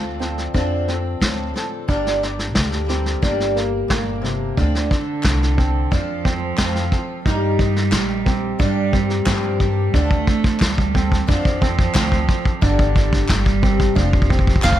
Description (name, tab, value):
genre	indie folk with a building arrangement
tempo	89 BPM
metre	4/4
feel	straight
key	G minor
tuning	A4 = 440 Hz
part	fingerpicked acoustic archtop guitar	accompaniment	0.0-7.3 s	G2 to A4	-30 LUFS	left 4 dB	none
part	picked twelve-string acoustic guitar	accompaniment	0.0-14.8 s	G2 to A4	-26 LUFS	left 3 dB	wide subtle chorus
part	upright bass	bass	0.0-14.8 s	F1 to G2	-22 LUFS	equal	none
part	clear upright piano	arpeggios	0.2-14.8 s	Bb3 to Eb4	-27 LUFS	right 4 dB	none
part	vintage brush drum kit	drums	0.2-14.8 s	kick drum, snare drum	-19 LUFS	equal	none
part	dark cello	second line	4.6-14.8 s	D3 to A3	-24 LUFS	right 7 dB	none
part	group handclap	percussion	5.2-14.8 s	none	-29 LUFS	left 3 dB	none
part	mandolin	melody	14.6-14.8 s	F5	-17 LUFS	right 2 dB	slapback echo
room	little or no reverb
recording	dark, warm production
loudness	-16 LUFS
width	side -12 dB against mid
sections	0.0-14.8 A section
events	build-up 0.0-14.8; drum fill 0.0-14.8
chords	0.0 Dm7; 1.9 Gm; 4.6 Dm7; 5.9 F; 7.3 Eb/G; 8.6 Gm; 9.9 Dm7; 12.6 Gm; 14.0 Fsus2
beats	0.55 1.22 | 1.89 2.56 3.23 3.90 | 4.57 5.24 5.91 6.58 | 7.25 7.92 8.60 9.27 | 9.94 10.61 11.28 11.95 | 12.62 13.29 13.97 14.64